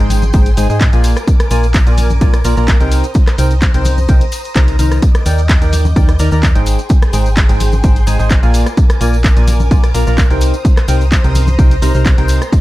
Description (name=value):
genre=piano house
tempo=128 BPM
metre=4/4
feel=swing 53% on 16ths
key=unclear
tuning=A4 = 440 Hz
part: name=string machine, violins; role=sustained chords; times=0.0-12.6 s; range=Ab4 to G6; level=-25 LUFS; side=equal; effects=ensemble chorus, sidechain pumping
part: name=percussive organ stab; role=riff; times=0.0-12.4 s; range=C3 to Bb5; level=-19 LUFS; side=equal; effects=lush chorus, sidechain pumping
part: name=solid FM bass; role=bass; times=0.0-12.4 s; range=Ab1 to Ab2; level=-13 LUFS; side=equal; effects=tube saturation, sidechain pumping
part: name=punchy analog drum machine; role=drums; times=0.1-12.6 s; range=handclaps, hi-hat, rim click, shaker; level=-21 LUFS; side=equal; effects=none
part: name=congas and tambourine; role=percussion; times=0.1-12.6 s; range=none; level=-26 LUFS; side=left 3 dB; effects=none
part: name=electronic kick drum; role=drums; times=0.3-12.6 s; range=none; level=-11 LUFS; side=equal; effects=none
room=little or no reverb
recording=dark, warm production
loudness=-9 LUFS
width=side -17 dB against mid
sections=0.0-12.6 A section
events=none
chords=0.0 Abmaj7; 1.0 Bb7; 2.9 Cm7; 5.0 Ebmaj7; 6.7 Abmaj7; 8.5 Bb7; 10.4 Cm7